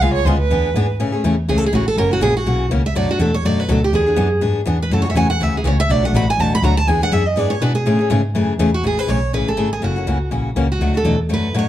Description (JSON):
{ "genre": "acoustic string swing (jazz manouche)", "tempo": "245 BPM", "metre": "4/4", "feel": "swing 56% on 8ths", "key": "A major", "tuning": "A4 = 438 Hz", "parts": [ { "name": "warm violin", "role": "second line", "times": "0.0-0.9 s", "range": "B4 to E#5", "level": "-21 LUFS", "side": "right 5 dB", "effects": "none" }, { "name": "picked steel-string acoustic guitar", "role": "accompaniment", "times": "0.0-11.6 s", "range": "B2 to G#4", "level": "-20 LUFS", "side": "left 3 dB", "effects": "none" }, { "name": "warm double bass", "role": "bass", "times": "0.0-11.7 s", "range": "F#1 to B2", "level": "-18 LUFS", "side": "equal", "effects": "none" }, { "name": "picked steel-string acoustic guitar", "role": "melody", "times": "1.5-11.7 s", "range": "F#4 to B5", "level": "-20 LUFS", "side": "right 3 dB", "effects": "none" } ], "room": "light reverb", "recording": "dark, warm production", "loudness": "-15 LUFS", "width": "side -12 dB against mid", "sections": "1.0-8.8 A section; 8.8-11.7 B section", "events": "steel-string acoustic guitar solo 1.0-8.8", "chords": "0.0 C#7; 0.5 E7; 1.0 Amaj7; 2.0 F#7; 3.0 Bm7; 3.9 E7; 4.9 F#m7; 5.9 Bm7; 6.9 E7; 7.9 Amaj7; 9.8 F#7; 10.8 Bm7" }